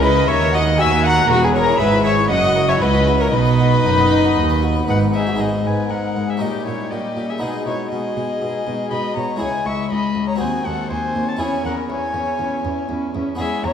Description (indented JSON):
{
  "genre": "classical, baroque-style concerto movement with solo episodes",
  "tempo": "120 BPM",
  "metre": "4/4",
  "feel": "straight",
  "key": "B major, G# minor from 5.4 s",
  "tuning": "A4 = 440 Hz",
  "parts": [
    { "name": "rich violin", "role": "melody", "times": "0.0-13.7 s", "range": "F#4 to C#6", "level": "-22 LUFS", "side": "left 2 dB", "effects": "none" },
    { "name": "warm chamber violin section", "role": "melody", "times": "0.0-13.7 s", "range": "B3 to F#6", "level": "-27 LUFS", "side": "left 5 dB", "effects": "none" },
    { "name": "rich chamber violin section", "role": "second line", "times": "0.0-13.7 s", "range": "E4 to A#5", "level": "-25 LUFS", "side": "left 2 dB", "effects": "none" },
    { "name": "harpsichord", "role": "accompaniment", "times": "0.0-13.7 s", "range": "C#2 to E5", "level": "-23 LUFS", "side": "left 2 dB", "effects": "none" },
    { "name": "warm chamber viola section", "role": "accompaniment", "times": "0.0-13.7 s", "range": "G3 to A#4", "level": "-26 LUFS", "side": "equal", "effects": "none" },
    { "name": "rich chamber cello section", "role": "bass", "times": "0.0-13.7 s", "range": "C#2 to D#3", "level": "-25 LUFS", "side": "right 4 dB", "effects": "none" },
    { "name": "rich chamber double bass section", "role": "bass", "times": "0.0-5.4 s", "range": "E1 to D#2", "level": "-20 LUFS", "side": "right 3 dB", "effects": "none" }
  ],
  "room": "wet concert hall reverb, RT60 2.2 s",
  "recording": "dark, warm production",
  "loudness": "-16 LUFS",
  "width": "side -8 dB against mid",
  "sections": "0.0-5.4 A section; 5.4-13.7 B section",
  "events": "none",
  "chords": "0.3 D#m; 1.3 E; 2.3 F#; 3.3 B; 5.4 G#m; 6.4 D#7/A#; 7.4 G#m/B; 9.4 C#m; 10.4 G#7/D#; 11.4 C#m/E",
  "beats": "0.29 0.79 | 1.29 1.79 2.30 2.81 | 3.33 3.85 4.37 4.88 | 5.40 5.91 6.42 6.92 | 7.42 7.92 8.42 8.92 | 9.42 9.92 10.41 10.91 | 11.41 11.91 12.40 12.90 | 13.40"
}